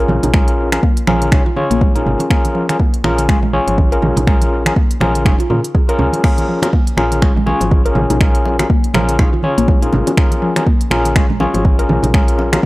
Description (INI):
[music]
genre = afro house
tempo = 122 BPM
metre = 4/4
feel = swing 57% on 16ths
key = Bb minor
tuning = A4 = 438 Hz
[part]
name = mallet-like synth pluck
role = arpeggios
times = 0.0-12.7 s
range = F3 to Bb4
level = -22 LUFS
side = equal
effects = chorus, phaser, sidechain pumping, tape echo
[part]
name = overdriven tine electric piano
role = stabs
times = 0.0-12.6 s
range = Db4 to Db5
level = -18 LUFS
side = left 1 dB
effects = fast tremolo, sidechain pumping, tape echo
[part]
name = woody FM bass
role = bass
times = 0.0-12.6 s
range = F1 to Bb2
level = -20 LUFS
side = equal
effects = sidechain pumping
[part]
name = afro-pop drum kit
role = drums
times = 0.1-12.6 s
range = crash cymbal, finger snaps, hi-hat, toms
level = -23 LUFS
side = equal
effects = small room ambience
[part]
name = congas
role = percussion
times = 0.1-12.6 s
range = none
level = -21 LUFS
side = right 2 dB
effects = none
[part]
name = electronic kick drum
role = drums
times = 0.3-12.7 s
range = none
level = -13 LUFS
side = equal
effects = overdrive, small room ambience
[part]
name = bongos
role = percussion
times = 6.6-12.6 s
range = none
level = -23 LUFS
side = left 2 dB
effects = none
[sound]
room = little or no reverb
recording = dry, gritty hardware recording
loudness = -12 LUFS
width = side -19 dB against mid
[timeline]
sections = 0.0-12.7 A section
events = none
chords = 0.0 Bbm7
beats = | 0.34 0.83 1.32 1.81 | 2.31 2.80 3.29 3.78 | 4.27 4.76 5.25 5.75 | 6.24 6.73 7.22 7.71 | 8.21 8.70 9.19 9.68 | 10.17 10.66 11.16 11.65 | 12.14 12.63